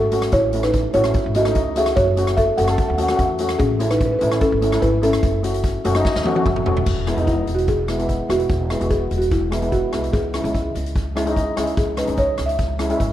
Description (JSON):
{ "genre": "calypso", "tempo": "147 BPM", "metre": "4/4", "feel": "straight", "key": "E major", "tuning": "A4 = 441 Hz", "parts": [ { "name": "buzzing marimba with soft mallets", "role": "melody", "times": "0.0-12.6 s", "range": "C#4 to F#5", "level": "-21 LUFS", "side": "right 1 dB", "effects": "none" }, { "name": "upright bass", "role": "bass", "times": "0.0-13.1 s", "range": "E1 to E2", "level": "-24 LUFS", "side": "equal", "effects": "none" }, { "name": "steel pan", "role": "accompaniment", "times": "0.1-13.1 s", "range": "G#3 to A4", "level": "-22 LUFS", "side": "left 1 dB", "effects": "none" }, { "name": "street-band drum kit", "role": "drums", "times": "0.1-13.1 s", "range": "crash cymbal, hi-hat, kick drum, rim click, snare drum, toms", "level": "-24 LUFS", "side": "equal", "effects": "none" } ], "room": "light reverb", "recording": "lossy compression artefacts", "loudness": "-17 LUFS", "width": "side -12 dB against mid", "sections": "0.0-6.9 A section; 6.9-13.1 B section", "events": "drum fill 6.1-6.9; marimba solo 6.9-13.1", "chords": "0.3 Amaj7; 2.0 F#m; 3.6 Amaj7; 5.2 F#m; 6.9 E; 10.1 C#m" }